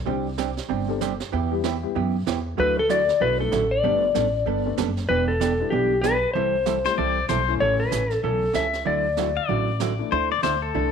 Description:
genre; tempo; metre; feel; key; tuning
country, western swing; 191 BPM; 4/4; swing 61% on 8ths; unclear; A4 = 443 Hz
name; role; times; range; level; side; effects
upright bass; bass; 0.0-10.9 s; E1 to F#2; -28 LUFS; equal; none
dark upright piano; accompaniment; 0.1-7.9, 10.0-10.9 s; E3 to A4; -31 LUFS; left 13 dB; none
vintage hollow-body jazz guitar; accompaniment; 0.1-10.9 s; C3 to A4; -27 LUFS; right 15 dB; none
jazz brush drum kit; drums; 0.1-10.9 s; brushed snare drum, hi-hat, snare drum; -35 LUFS; right 10 dB; none
clean lap steel guitar; melody; 2.6-9.8 s; G4 to E5; -22 LUFS; left 3 dB; slapback echo
pedal steel guitar; second line; 6.9-10.9 s; A4 to F5; -24 LUFS; left 11 dB; none
room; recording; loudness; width
light reverb, studio reverb; 1960s-style stereo with parts hard left and right; -20 LUFS; side -7 dB against mid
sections
0.0-10.9 A section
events
none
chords
0.1 Csus2; 1.3 Em; 2.6 Dadd9; 3.8 Gadd9; 5.1 Em7; 6.3 C6; 7.6 A; 8.9 Dadd9; 10.1 Dsus2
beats
| 0.07 0.38 0.70 1.01 | 1.32 1.64 1.95 2.27 | 2.58 2.90 3.21 3.52 | 3.84 4.15 4.47 4.78 | 5.09 5.41 5.72 6.04 | 6.35 6.66 6.98 7.29 | 7.60 7.92 8.23 8.54 | 8.86 9.17 9.49 9.80 | 10.11 10.43 10.74

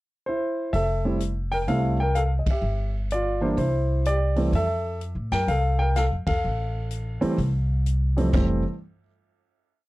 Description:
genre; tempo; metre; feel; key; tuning
jazz piano trio; 126 BPM; 4/4; swing 66% on 8ths; F major; A4 = 445 Hz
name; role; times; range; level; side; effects
dark grand piano; melody; 0.3-8.6 s; F2 to G5; -25 LUFS; equal; slapback echo
upright bass; bass; 0.7-8.6 s; F1 to A2; -24 LUFS; equal; none
swinging big-band drum kit; drums; 0.7-8.5 s; hi-hat, kick drum, ride cymbal, snare drum, splash cymbal, toms; -29 LUFS; equal; none
room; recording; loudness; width
little or no reverb; dry, close 1970s-style studio recording, tape saturation; -22 LUFS; side -19 dB against mid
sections
0.0-0.7 pickup bar; 0.7-8.3 A section; 8.3-9.9 final chord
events
band accent 2.4, 6.2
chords
0.0 N.C.; 0.7 Fmaj7; 2.6 G7(no3); 3.6 Cadd9; 4.5 F; 8.3 N.C.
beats
0.26 | 0.73 1.21 1.68 2.15 | 2.63 3.10 3.57 4.05 | 4.52 5.00 5.48 5.95 | 6.43 6.91 7.38 7.86 | 8.34

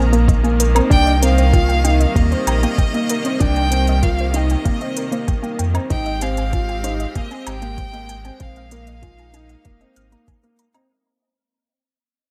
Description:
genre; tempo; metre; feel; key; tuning
piano and strings electronica; 96 BPM; 4/4; straight; unclear; A4 = 441 Hz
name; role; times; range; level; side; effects
clear violin; melody; 0.0-10.3 s; Eb5 to Bb5; -27 LUFS; equal; none
bright symphonic string section; sustained chords; 0.0-10.9 s; C3 to G4; -29 LUFS; equal; none
soft round pluck; arpeggios; 0.0-10.9 s; Bb4 to F6; -32 LUFS; equal; chorus, sidechain pumping, delay
warm sub bass; bass; 0.0-10.2 s; F1 to F2; -20 LUFS; equal; tube saturation, sidechain pumping
dark baby grand piano; riff; 0.1-10.8 s; Bb3 to F4; -25 LUFS; equal; delay
electronic hi-hat and woodblock; drums; 0.1-10.9 s; none; -29 LUFS; equal; overdrive
electronic kick drum; drums; 0.3-10.4 s; none; -20 LUFS; equal; overdrive
room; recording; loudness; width
light reverb, digital ambience; none; -17 LUFS; mono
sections
0.0-10.9 A section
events
drop 0.0-10.9; fade-out 0.9-10.9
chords
0.0 Bb7sus4; 0.9 Cm7; 5.9 Abmaj7; 8.4 Bb7sus4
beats
0.28 | 0.91 1.53 2.16 2.78 | 3.41 4.03 4.66 5.28 | 5.91 6.53 7.16 7.78 | 8.41 9.03 9.66 10.28

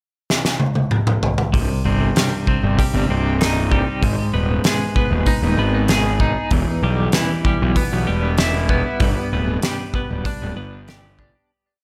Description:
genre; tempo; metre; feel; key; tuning
quiet-loud alternative rock; 96 BPM; 4/4; straight; unclear; A4 = 440 Hz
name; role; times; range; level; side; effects
loose indie drum kit; drums; 0.3-11.3 s; hi-hat, kick drum, snare drum, toms; -22 LUFS; equal; none
twelve-string electric guitar; arpeggios; 1.5-11.5 s; C2 to Ab4; -24 LUFS; equal; tremolo, tape echo
fuzz picked electric bass; bass; 1.5-11.3 s; C1 to B1; -23 LUFS; equal; overdrive
room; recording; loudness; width
small room reverb; none; -19 LUFS; mono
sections
0.0-1.5 pickup bar; 1.5-11.5 verse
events
drum fill 0.3-1.5; fade-out 9.0-11.5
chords
0.0 N.C.; 1.5 Cm; 4.0 Abm; 6.5 Em; 9.0 G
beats
0.29 0.92 | 1.54 2.16 2.78 3.41 | 4.03 4.65 5.28 5.90 | 6.52 7.15 7.77 8.39 | 9.01 9.64 10.26 10.88

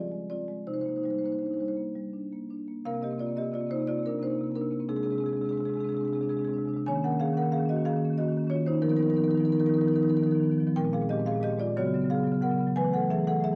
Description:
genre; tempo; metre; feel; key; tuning
classical, contemporary piece for solo marimba; 53-62 BPM (dotted quarters); 6/8; rubato; C minor; A4 = 441 Hz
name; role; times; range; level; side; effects
marimba with medium mallets; solo; 0.0-13.6 s; Bb2 to Ab5; -28 LUFS; equal; none
room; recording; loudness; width
moderate stone room reverb, RT60 1.0 s; worn, warbling old tape, cassette tape, warbly pitch drift; -28 LUFS; mono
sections
0.0-2.9 A section; 2.9-13.6 B section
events
none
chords
0.0 Fm; 0.7 Cm9; 2.9 Cm7; 4.9 Ab/C; 6.9 Ebm7; 8.8 Bmaj7#11/D#; 10.8 Bbsus2; 11.8 Db7sus4; 12.8 Esus24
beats
| 0.66 1.77 | 2.85 3.87 | 4.88 5.88 | 6.87 7.84 | 8.82 9.79 | 10.76 11.76 | 12.75

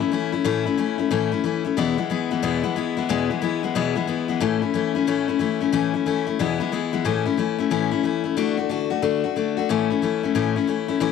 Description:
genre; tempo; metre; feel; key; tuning
rock; 182 BPM; 4/4; swing 64% on 8ths; A major; A4 = 441 Hz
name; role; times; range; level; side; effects
picked steel-string acoustic guitar; solo; 0.0-11.1 s; E2 to F#4; -20 LUFS; left 9 dB; none
room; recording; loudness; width
moderate spring reverb, RT60 1.5 s, small room ambience; none; -20 LUFS; side -5 dB against mid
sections
0.0-7.1 A section; 7.1-11.1 B section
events
none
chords
0.0 A; 1.8 E; 4.4 A; 6.4 E; 7.1 A; 8.4 D; 9.7 A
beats
0.12 | 0.45 0.78 1.11 1.44 | 1.77 2.10 2.43 2.76 | 3.09 3.42 3.75 4.08 | 4.41 4.74 5.07 5.40 | 5.73 6.06 6.39 6.72 | 7.05 7.38 7.71 8.04 | 8.37 8.70 9.03 9.36 | 9.69 10.02 10.35 10.68 | 11.01

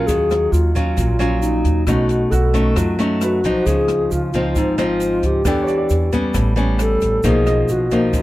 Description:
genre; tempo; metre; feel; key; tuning
bossa nova; 134 BPM; 4/4; straight; unclear; A4 = 440 Hz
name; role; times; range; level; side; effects
mellow hollow wooden-headed alto flute; melody; 0.0-8.2 s; Eb4 to A4; -20 LUFS; left 1 dB; slapback echo
clear baby grand piano; accompaniment; 0.0-8.2 s; F#4 to D#5; -29 LUFS; right 6 dB; none
nylon-string guitar; accompaniment; 0.0-8.2 s; F#2 to G4; -19 LUFS; left 1 dB; none
upright bass; bass; 0.0-8.2 s; Ab1 to F#2; -21 LUFS; equal; none
open jazz drum kit; drums; 0.1-8.2 s; hi-hat, kick drum, rim click; -25 LUFS; equal; none
tube shaker; percussion; 0.1-8.2 s; none; -38 LUFS; right 6 dB; none
room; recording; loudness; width
little or no reverb; dry, close 1970s-style studio recording; -15 LUFS; side -16 dB against mid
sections
0.0-8.2 A section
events
none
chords
0.1 Ebm9; 1.9 B9; 3.7 Dbmaj9; 5.5 Em7; 6.3 A9; 7.2 Bmaj7#11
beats
| 0.09 0.53 0.98 1.43 | 1.87 2.32 2.77 3.21 | 3.66 4.11 4.55 5.00 | 5.45 5.90 6.34 6.79 | 7.24 7.69 8.13

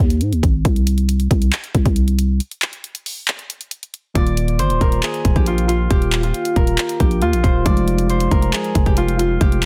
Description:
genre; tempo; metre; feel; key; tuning
hip hop, trap; 137 BPM; 4/4; half-time; Eb major; A4 = 441 Hz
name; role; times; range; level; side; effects
growling 808-style bass; bass; 0.0-9.7 s; Eb1 to Ab2; -20 LUFS; equal; none
trap drum kit; drums; 0.1-9.7 s; handclaps, hi-hat, kick drum; -21 LUFS; equal; none
muted felt-like synth keys; accompaniment; 4.1-9.7 s; Eb3 to F4; -28 LUFS; equal; chorus
Celtic harp; melody; 4.2-9.7 s; F4 to D5; -23 LUFS; equal; tape echo
room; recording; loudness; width
little or no reverb; dense, heavily limited modern master; -18 LUFS; mono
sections
0.0-9.7 A section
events
break 0.0-4.2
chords
0.0 Ab5; 0.7 N.C.; 4.2 Ebsus2; 7.7 Fm7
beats
0.21 | 0.65 1.09 1.53 1.96 | 2.40 2.84 3.28 3.72 | 4.15 4.59 5.03 5.47 | 5.91 6.34 6.78 7.22 | 7.66 8.10 8.53 8.97 | 9.41

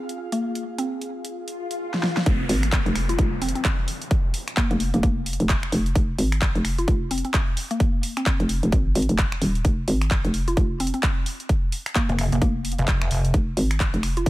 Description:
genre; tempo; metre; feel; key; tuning
bass house; 130 BPM; 4/4; swing 60% on 16ths; F minor; A4 = 441 Hz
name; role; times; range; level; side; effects
airy breathy pad; texture; 0.0-1.8 s; F4 to F5; -35 LUFS; left 1 dB; chorus, sidechain pumping
big-room dance drum kit; drums; 0.1-14.3 s; finger snaps, handclaps, hi-hat, snare drum; -28 LUFS; equal; overdrive
mallet-like synth pluck; melody; 0.3-14.3 s; Bb3 to F4; -29 LUFS; equal; chorus, digital delay
swell and downlifter; sound effects; 1.5-6.0 s; none; -32 LUFS; left 1 dB; none
hollow knocking FM bass; bass; 2.3-14.3 s; Eb1 to Ab1; -23 LUFS; equal; overdrive, sidechain pumping
electronic kick drum; drums; 2.3-14.3 s; none; -22 LUFS; equal; overdrive
pulsing pluck wobble bass; bass; 12.1-13.3 s; F1; -22 LUFS; equal; chorus, tube saturation, sidechain pumping
room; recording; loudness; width
digital ambience; none; -20 LUFS; side -17 dB against mid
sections
0.0-2.3 A section; 2.3-14.3 B section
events
swell 1.5-2.3; drum fill 1.9-2.3; drop 2.3-14.3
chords
0.0 Fm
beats
| 0.42 0.88 1.34 1.80 | 2.26 2.72 3.19 3.65 | 4.11 4.57 5.03 5.49 | 5.96 6.42 6.88 7.34 | 7.80 8.26 8.72 9.19 | 9.65 10.11 10.57 11.03 | 11.49 11.96 12.42 12.88 | 13.34 13.80 14.26

